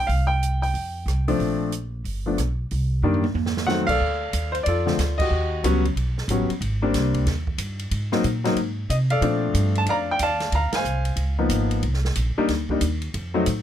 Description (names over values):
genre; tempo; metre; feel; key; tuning
jazz piano trio; 184 BPM; 4/4; swing 64% on 8ths; unclear; A4 = 439 Hz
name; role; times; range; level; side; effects
clear baby grand piano; melody; 0.0-13.5 s; D3 to Bb5; -23 LUFS; left 2 dB; none
upright bass; bass; 0.0-13.6 s; G1 to C3; -24 LUFS; right 1 dB; none
open jazz drum kit; drums; 0.1-13.6 s; crash cymbal, hi-hat, kick drum, ride cymbal, rim click, snare drum, toms; -32 LUFS; right 3 dB; none
room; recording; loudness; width
little or no reverb; close, detailed microphones; -21 LUFS; side -10 dB against mid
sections
0.0-4.0 A section; 4.0-13.6 B section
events
drum fill 3.0-3.7; band accent 5.1, 10.7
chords
0.1 C5; 0.7 Fsus2; 1.4 Bbmaj7; 2.0 G; 2.7 Cm7; 3.4 F7b9; 4.0 Dm; 5.3 Eb7alt; 6.6 Abmaj9#11; 7.9 Abadd9; 9.2 Bbmaj7; 10.5 Dm7b5; 11.2 Db13; 11.8 Cm9